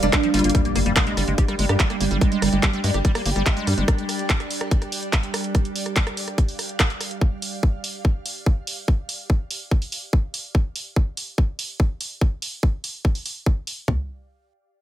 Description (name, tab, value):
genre	psychedelic trance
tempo	144 BPM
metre	4/4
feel	straight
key	G minor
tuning	A4 = 440 Hz
part	oud	melody	0.0-0.5 s	D4 to F4	-24 LUFS	right 2 dB	phaser, sidechain pumping, tape echo
part	evolving wavetable pad	sustained chords	0.0-7.3 s	G3 to D4	-28 LUFS	right 3 dB	phaser, built-in reverb, sidechain pumping
part	liquid acid bass	riff	0.0-3.8 s	F3 to G4	-28 LUFS	moving between left 3 dB and right 4 dB	chorus, auto-pan, sidechain pumping, dub echo
part	tight sequencer bass	bass	0.0-3.8 s	F1 to G2	-22 LUFS	equal	none
part	drum and bass drum kit	drums	0.0-13.8 s	handclaps, hi-hat, rim click	-26 LUFS	right 1 dB	none
part	ethereal airy pad	texture	0.0-10.5 s	G4 to G5	-34 LUFS	equal	ensemble chorus, built-in reverb, sidechain pumping
part	drum and bass drum kit	drums	0.1-14.0 s	kick drum, toms	-19 LUFS	equal	none
part	impact	sound effects	0.6-2.2 s	none	-31 LUFS	equal	none
room	digital ambience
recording	none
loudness	-20 LUFS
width	side -12 dB against mid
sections	0.5-13.9 A section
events	drum fill 0.3; fade-out on ambient pad 0.5-10.5; impact 0.5-2.2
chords	0.0 G5; 13.9 N.C.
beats	0.13 | 0.55 0.96 1.38 1.80 | 2.21 2.63 3.05 3.46 | 3.88 4.30 4.71 5.13 | 5.55 5.96 6.38 6.80 | 7.21 7.63 8.05 8.46 | 8.88 9.30 9.71 10.13 | 10.55 10.96 11.38 11.80 | 12.21 12.63 13.05 13.46 | 13.88